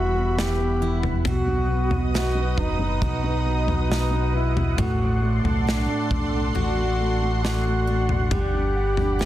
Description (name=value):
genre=pop ballad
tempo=68 BPM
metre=4/4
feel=straight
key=unclear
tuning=A4 = 442 Hz
part: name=mellow duduk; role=melody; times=0.0-9.3 s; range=D4 to G4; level=-27 LUFS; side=equal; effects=none
part: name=felt-muted upright piano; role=accompaniment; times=0.0-9.3 s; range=B2 to F#5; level=-30 LUFS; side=left 2 dB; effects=none
part: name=lush unison pad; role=sustained chords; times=0.0-9.3 s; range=G3 to D#6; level=-31 LUFS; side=right 1 dB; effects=chorus, phaser
part: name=picked steel-string acoustic guitar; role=arpeggios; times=0.0-9.3 s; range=E2 to F#4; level=-32 LUFS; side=right 4 dB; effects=none
part: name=deep dub fingered electric bass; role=bass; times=0.0-9.3 s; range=E1 to B1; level=-24 LUFS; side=equal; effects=none
part: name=modern studio drum kit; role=drums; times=0.4-9.3 s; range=kick drum, snare drum, toms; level=-27 LUFS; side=left 1 dB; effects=none
room=small room ambience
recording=dense, heavily limited modern master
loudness=-20 LUFS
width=side -13 dB against mid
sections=0.0-9.3 A section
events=none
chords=0.0 Emadd9; 1.3 B; 4.8 D7/A; 8.3 Gmaj7